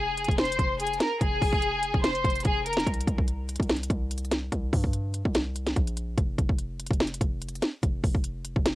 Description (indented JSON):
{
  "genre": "hip hop, trap",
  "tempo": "145 BPM",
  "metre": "4/4",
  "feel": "half-time",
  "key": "unclear",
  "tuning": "A4 = 440 Hz",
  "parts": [
    { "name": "clear studio violin section", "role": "melody", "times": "0.0-2.8 s", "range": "Ab4 to C6", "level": "-27 LUFS", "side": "left 1 dB", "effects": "low-pass filter, cassette tape" },
    { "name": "hard-hitting 808-style bass", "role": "bass", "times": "0.0-8.8 s", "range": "F1 to G2", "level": "-32 LUFS", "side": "equal", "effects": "none" },
    { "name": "trap drum kit", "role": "drums", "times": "0.2-8.8 s", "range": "hi-hat, kick drum, snare drum", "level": "-26 LUFS", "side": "equal", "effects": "overdrive, cassette tape" }
  ],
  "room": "little or no reverb",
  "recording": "home recording on cassette",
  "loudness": "-25 LUFS",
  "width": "side -17 dB against mid",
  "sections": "0.0-8.8 A section",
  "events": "break 2.9-8.8",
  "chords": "0.0 Fm; 2.9 C5; 6.2 N.C.",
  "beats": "0.38 0.80 | 1.21 1.62 2.04 2.45 | 2.87 3.28 3.69 4.11 | 4.52 4.93 5.35 5.76 | 6.18 6.59 7.00 7.42 | 7.83 8.24 8.66"
}